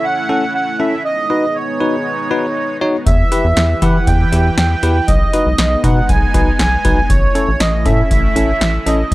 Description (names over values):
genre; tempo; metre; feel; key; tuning
synth-pop; 119 BPM; 4/4; straight; unclear; A4 = 440 Hz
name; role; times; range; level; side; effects
accordion; melody; 0.0-9.1 s; C#5 to G#5; -18 LUFS; right 2 dB; light tremolo tuning, analog delay
sweeping resonant pad; sustained chords; 0.0-9.1 s; E3 to B4; -23 LUFS; right 1 dB; chorus
bell-like tine electric piano; accompaniment; 0.3-9.0 s; C#4 to C#5; -19 LUFS; left 2 dB; medium stereo tremolo
rubbery square bass; bass; 3.1-9.1 s; A1 to E3; -16 LUFS; equal; none
electro analog drum machine; drums; 3.1-9.1 s; hi-hat, kick drum, snare drum; -16 LUFS; equal; none
room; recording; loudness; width
little or no reverb; dry, gritty hardware recording; -12 LUFS; side -18 dB against mid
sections
0.0-9.1 A section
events
none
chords
0.0 A; 1.0 B6; 3.1 Em; 5.1 B6; 7.1 A